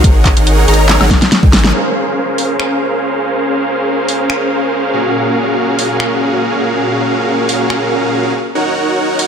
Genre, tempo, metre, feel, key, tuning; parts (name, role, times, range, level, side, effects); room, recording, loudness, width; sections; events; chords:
future bass; 141 BPM; 4/4; swing 53% on 16ths, half-time; Bb minor; A4 = 440 Hz
supersaw chords; riff; 0.0-9.3 s; Bb2 to Bb5; -13 LUFS; equal; sidechain pumping, low-pass filter, ping-pong delay
saturated sub bass; bass; 0.0-1.7 s; Ab1; -12 LUFS; equal; sidechain pumping
electronic kick drum; drums; 0.0-1.5 s; -10 LUFS; equal; overdrive
pop drum kit; drums; 0.0-9.3 s; finger snaps, handclaps, hi-hat, snare drum, woodblock; -15 LUFS; left 1 dB
moderate lush hall reverb, RT60 2.0 s, digital ambience; -11 LUFS; side -7 dB against mid
0.0-1.7 A section; 1.7-9.3 B section
drop 0.0-1.7; drum fill 0.9-1.7; band accent 1.6; filter sweep on supersaw synth 1.7-9.3
0.0 Ab9sus4; 1.7 Bbm9; 4.9 Gbmaj9/Bb; 8.6 Ebm7